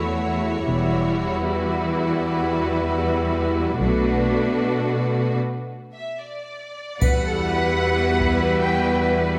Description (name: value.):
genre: cinematic, epic orchestral film score.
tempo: 76 BPM (dotted quarters).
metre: 6/8.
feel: straight.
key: E dorian.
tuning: A4 = 440 Hz.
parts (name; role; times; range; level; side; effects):
clear symphonic violin section; second line; 0.0-9.4 s; F#4 to C#5; -30 LUFS; equal; none.
clear symphonic viola section; accompaniment; 0.0-9.4 s; G3 to E4; -27 LUFS; equal; none.
rich symphonic cello section; bass; 0.0-9.3 s; E2 to B4; -27 LUFS; equal; none.
rich symphonic double bass section; bass; 0.7-1.2, 3.8-4.3, 7.0-9.4 s; E1 to E2; -28 LUFS; equal; none.
clear symphonic violin section; melody; 5.9-9.1 s; D5 to G5; -30 LUFS; equal; none.
dark French horn section; sustained chords; 7.0-9.4 s; G3 to B3; -28 LUFS; equal; none.
solo taiko drums; drums; 7.0-8.4 s; none; -25 LUFS; equal; none.
triangle; percussion; 7.0-8.0 s; none; -41 LUFS; equal; none.
room: moderate scoring stage reverb, RT60 1.9 s.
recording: none.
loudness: -22 LUFS.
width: mono.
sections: 0.0-7.0 A section; 7.0-9.4 B section.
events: build-up 0.0-7.0; break 5.4-7.0.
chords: 0.0 A6/E; 0.7 Emadd9; 3.8 Bm7; 7.0 Emadd9.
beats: | 0.67 1.45 | 2.24 3.02 | 3.81 4.61 | 5.41 6.21 | 7.02 7.81 | 8.60 9.38.